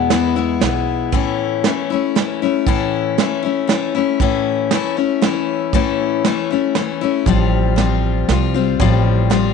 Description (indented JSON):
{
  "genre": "folk",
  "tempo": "117 BPM",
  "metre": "3/4",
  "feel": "straight",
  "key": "A mixolydian",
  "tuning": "A4 = 440 Hz",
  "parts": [
    { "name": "picked steel-string acoustic guitar", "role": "accompaniment", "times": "0.0-9.5 s", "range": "E2 to F4", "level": "-17 LUFS", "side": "left 10 dB", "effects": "none" },
    { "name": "upright bass", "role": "bass", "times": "0.0-1.1, 7.3-9.5 s", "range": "A1 to E2", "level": "-18 LUFS", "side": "right 3 dB", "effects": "none" },
    { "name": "soft brush drum kit", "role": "drums", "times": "0.1-9.4 s", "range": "hi-hat, kick drum, snare drum", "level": "-19 LUFS", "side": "right 6 dB", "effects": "none" }
  ],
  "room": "light reverb, small room ambience",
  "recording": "1960s-style stereo with parts hard left and right, nothing above 10.4 kHz",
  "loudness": "-15 LUFS",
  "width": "side -6 dB against mid",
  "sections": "0.0-1.1 A section; 1.1-9.5 B section",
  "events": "none",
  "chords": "0.0 E; 1.1 A; 7.3 Fadd9/A"
}